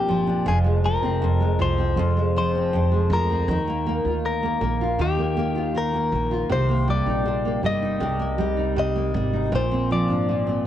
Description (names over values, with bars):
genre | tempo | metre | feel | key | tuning
acoustic pop | 80 BPM | 4/4 | straight | Eb major | A4 = 440 Hz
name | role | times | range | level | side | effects
direct-recorded clean electric guitar | melody | 0.0-10.6 s | G4 to Eb5 | -26 LUFS | left 4 dB | phaser, cassette tape
nylon-string guitar | accompaniment | 0.0-10.7 s | F2 to F4 | -22 LUFS | right 1 dB | double-tracked left and right, cassette tape
upright bass | bass | 0.0-10.6 s | F1 to Eb2 | -27 LUFS | right 1 dB | none
room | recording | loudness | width
light reverb, studio reverb | home recording on cassette | -20 LUFS | side -11 dB against mid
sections
0.0-10.7 A section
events
none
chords
0.5 Fm; 3.5 Ebadd9; 6.5 Cm7; 9.5 Bbadd9